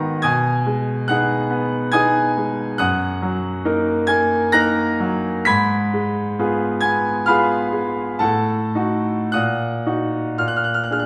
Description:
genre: classical, romantic nocturne for solo piano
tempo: 50-73 BPM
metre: 3/4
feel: rubato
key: Eb minor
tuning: A4 = 440 Hz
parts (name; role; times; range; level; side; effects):
- bright concert grand piano; solo; 0.0-11.1 s; Gb2 to Cb7; -20 LUFS; equal; none
room: wet recital hall reverb, RT60 1.4 s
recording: none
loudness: -20 LUFS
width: mono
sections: 0.0-11.1 A section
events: none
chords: 0.2 Abm/Cb; 2.8 Ebm/Gb; 5.5 Fdim/Ab; 8.2 Ebdim/A; 9.3 Ebm/Bb; 10.4 Bb7

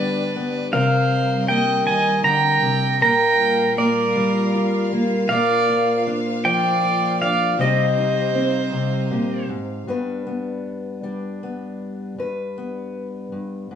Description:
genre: acoustic folk duo or small band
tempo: 52 BPM (dotted quarters)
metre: 6/8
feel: straight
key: unclear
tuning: A4 = 440 Hz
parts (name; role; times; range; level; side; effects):
- pedal steel guitar; melody; 0.0-9.5 s; D5 to Bb5; -21 LUFS; right 1 dB; none
- warm fiddle; second line; 0.0-9.5 s; Bb4 to G5; -25 LUFS; right 4 dB; none
- fingerpicked acoustic archtop guitar; accompaniment; 0.0-13.8 s; G2 to B4; -22 LUFS; left 2 dB; none
- warm chamber string section; sustained chords; 0.0-9.9 s; Bb2 to F5; -27 LUFS; right 2 dB; none
room: moderate studio reverb, RT60 0.7 s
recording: studio reverb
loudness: -18 LUFS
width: side -8 dB against mid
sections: 0.0-9.9 A section; 9.9-13.8 B section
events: none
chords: 0.0 G; 0.7 Cm7; 3.0 Gm7/Bb; 5.3 Bbadd9; 7.6 Cm; 9.9 G

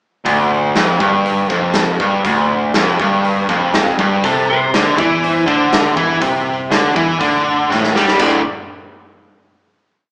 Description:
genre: classic rock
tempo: 121 BPM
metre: 4/4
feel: straight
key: unclear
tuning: A4 = 440 Hz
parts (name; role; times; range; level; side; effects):
- overdriven electric guitar; riff; 0.2-8.4 s; D2 to G3; -16 LUFS; equal; spring reverb
- biting overdriven guitar; riff; 0.3-8.4 s; D2 to G3; -17 LUFS; equal; none
- fingered electric bass; bass; 0.3-8.4 s; D1 to G2; -30 LUFS; equal; none
- big rock drum kit; drums; 0.3-8.3 s; crash cymbal, hi-hat, kick drum, snare drum; -18 LUFS; equal; none
- clean lap steel guitar; second line; 4.2-8.4 s; A4 to D5; -19 LUFS; equal; none
room: moderate large studio reverb, RT60 1.2 s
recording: band playing live in one room, small speaker sound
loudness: -12 LUFS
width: side -34 dB against mid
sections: 0.3-8.2 verse; 8.2-10.1 final chord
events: drum fill 7.7-8.2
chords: 0.3 Dmadd11; 4.2 C5; 8.2 D5

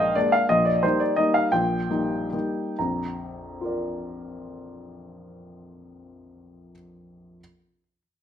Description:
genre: classical, piano waltz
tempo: 120-183 BPM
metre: 3/4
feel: rubato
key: Bb major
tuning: A4 = 440 Hz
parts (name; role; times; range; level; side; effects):
- warm baby grand piano; solo; 0.0-7.4 s; Bb1 to Bb5; -22 LUFS; equal; none
room: moderate large studio reverb, RT60 0.9 s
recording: minimal, uncompressed stereo recording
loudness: -21 LUFS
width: side -9 dB against mid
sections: 0.0-2.8 A section; 2.8-5.3 B section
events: slowing down 0.0-2.8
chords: 0.5 Eb/Bb; 2.8 Bb

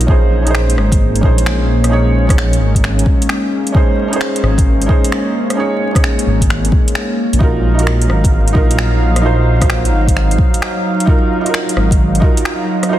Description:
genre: future garage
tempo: 131 BPM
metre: 4/4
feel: swing 65% on 16ths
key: unclear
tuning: A4 = 440 Hz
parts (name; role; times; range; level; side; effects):
- felt-muted upright piano; accompaniment; 0.0-13.0 s; Db4 to Db5; -20 LUFS; right 3 dB; vintage 12-bit sampler grit, sidechain pumping, tape echo
- warbly tape-like pad; sustained chords; 0.0-13.0 s; Gb3 to F5; -19 LUFS; left 1 dB; chorus, built-in reverb, sidechain pumping
- dark detuned saw bass; bass; 0.0-12.2 s; Ab1 to Bb1; -14 LUFS; equal; sidechain pumping
- garage drum kit; drums; 0.0-12.9 s; finger snaps, hi-hat, rim click; -21 LUFS; equal; studio reverb, soft clipping on snare
- electronic kick drum; drums; 0.1-12.3 s; none; -13 LUFS; equal; studio reverb
room: light reverb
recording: dense, heavily limited modern master, vinyl crackle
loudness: -11 LUFS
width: side -13 dB against mid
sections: 0.0-13.0 A section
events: none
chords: 0.1 Bbm11; 7.4 Ebmadd9

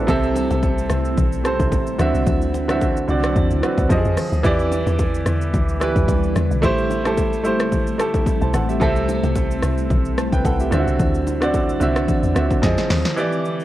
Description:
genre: amapiano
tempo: 110 BPM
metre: 4/4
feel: swing 55% on 16ths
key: unclear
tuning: A4 = 440 Hz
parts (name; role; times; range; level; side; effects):
- clear grand piano; accompaniment; 0.0-13.6 s; C3 to A5; -21 LUFS; right 2 dB; none
- ethereal airy pad; sustained chords; 0.0-13.6 s; D3 to E4; -28 LUFS; left 1 dB; ensemble chorus, built-in reverb, sidechain pumping
- woody log drum bass; bass; 0.0-13.0 s; G1 to F2; -22 LUFS; equal; none
- deep house drum kit; drums; 0.1-13.6 s; hi-hat, kick drum, rim click, shaker, snare drum; -22 LUFS; equal; none
- congas and bongos; percussion; 0.1-13.0 s; none; -30 LUFS; left 3 dB; none
room: light reverb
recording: worn, warbling old tape, cassette tape, warbly pitch drift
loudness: -17 LUFS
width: side -14 dB against mid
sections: 0.0-13.2 A section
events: drop 0.0-13.2; grand piano fill 12.4-13.2; drum fill 12.6-13.2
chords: 0.1 C6; 2.0 D9; 3.9 Fm7; 4.4 Em7; 6.6 Am7; 8.8 C6; 10.7 D9; 12.6 Fm7

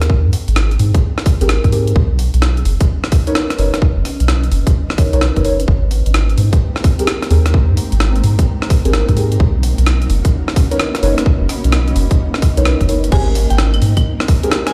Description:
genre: UK garage, two-step garage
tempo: 129 BPM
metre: 4/4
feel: swing 65% on 16ths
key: Ab major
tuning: A4 = 440 Hz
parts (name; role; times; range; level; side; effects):
- deep mellow chord stab; stabs; 0.0-14.6 s; C4 to C#5; -22 LUFS; equal; chorus, delay
- soft dub sub bass; bass; 0.0-13.9 s; F#1 to Ab2; -16 LUFS; equal; sidechain pumping
- breakbeat sampler-style drum kit; drums; 0.0-14.7 s; claves, crash cymbal, hi-hat, rim click; -24 LUFS; equal; none
- granular cloud pad; texture; 0.0-14.7 s; Ab3 to B5; -29 LUFS; equal; built-in reverb, sidechain pumping
- electronic kick drum; drums; 0.1-14.4 s; none; -15 LUFS; equal; none
- soft string machine; sustained chords; 5.8-14.7 s; Bb3 to Bb4; -31 LUFS; equal; ensemble chorus, sidechain pumping
- soft synth bell; melody; 13.1-14.7 s; G5 to Ab5; -28 LUFS; equal; chorus, digital delay
room: little or no reverb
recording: played on a big sound system in a bare room, large studio reverb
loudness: -14 LUFS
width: mono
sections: 0.0-13.1 A section; 13.1-14.7 B section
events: fade-in on ambient pad 0.0-13.1; drop 13.1-14.7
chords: 0.0 Abmaj9; 2.0 Bmaj9; 5.7 Abmaj9; 9.4 Bmaj9; 13.1 Abmaj9

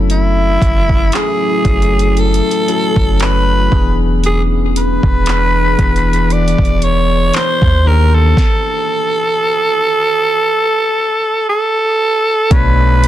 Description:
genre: contemporary R&B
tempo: 58 BPM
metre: 4/4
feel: swing 54% on 16ths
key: unclear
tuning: A4 = 442 Hz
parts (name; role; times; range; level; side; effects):
- bell-like tine electric piano; accompaniment; 0.0-13.1 s; B2 to C#5; -19 LUFS; left 6 dB; none
- deep dark ambient pad; sustained chords; 0.0-13.1 s; E3 to G#4; -23 LUFS; left 1 dB; chorus, built-in reverb, sidechain pumping
- soft 808-style bass; bass; 0.0-13.1 s; E1 to D#2; -14 LUFS; equal; none
- growling alto saxophone; melody; 0.1-13.1 s; E4 to D5; -14 LUFS; right 1 dB; ping-pong delay
- smooth R&B drum kit; drums; 0.1-13.1 s; handclaps, hi-hat, kick drum, snare drum; -15 LUFS; equal; overdrive, vintage 12-bit sampler grit
room: digital ambience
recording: dense, heavily limited modern master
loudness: -11 LUFS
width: side -12 dB against mid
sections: 0.0-12.5 A section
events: none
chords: 0.0 F#m7; 3.7 E7; 7.3 D#maj7; 8.4 N.C.; 12.5 Bm9

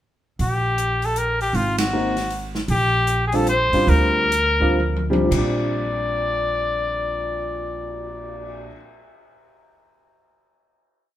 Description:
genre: jazz, small-group swing and bop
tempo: 109-157 BPM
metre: 3/4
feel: swing 64% on 8ths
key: Bb major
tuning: A4 = 440 Hz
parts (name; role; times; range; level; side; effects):
- clear trumpet; melody; 0.4-8.7 s; F4 to D5; -22 LUFS; left 2 dB; none
- upright bass; bass; 0.4-8.7 s; Ab1 to D2; -24 LUFS; right 1 dB; none
- open jazz drum kit; drums; 0.4-8.5 s; crash cymbal, cymbal swell, hi-hat, kick drum, ride cymbal, snare drum, toms; -30 LUFS; left 1 dB; none
- warm upright piano; accompaniment; 1.9-8.8 s; Bb2 to G4; -24 LUFS; right 1 dB; none
room: moderate large studio reverb, RT60 1.5 s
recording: minimal, uncompressed stereo recording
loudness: -18 LUFS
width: side -12 dB against mid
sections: 0.4-5.3 A section; 5.3-8.6 final chord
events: band accent 1.7; slowing down 2.7-5.3; drum fill 4.8-5.3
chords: 0.4 Gm/Bb; 1.5 Ab9; 2.7 Bb6

